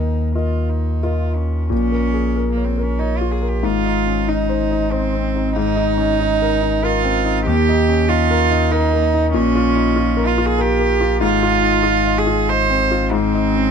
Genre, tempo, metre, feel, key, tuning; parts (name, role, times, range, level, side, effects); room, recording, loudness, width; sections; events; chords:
neoclassical piano and strings; 94 BPM; 3/4; rubato; A4 = 445 Hz
rich cello; second line; 0.0-13.7 s; Bb3 to C5; -19 LUFS; right 8 dB
warm concert grand piano; accompaniment; 0.0-13.7 s; Eb2 to Eb5; -19 LUFS; left 6 dB
punchy sub bass; bass; 0.0-13.7 s; Ab1 to Eb2; -21 LUFS; equal
little or no reverb; nothing above 10.6 kHz; -15 LUFS; side -6 dB against mid
0.0-1.7 A section; 1.7-13.7 B section
0.0 Ebsus2; 1.7 Bbm; 3.6 Fm7/Ab; 5.6 Abadd9; 7.5 Ebsus2; 9.4 Bbm; 11.2 Fm7/Ab; 13.1 Ab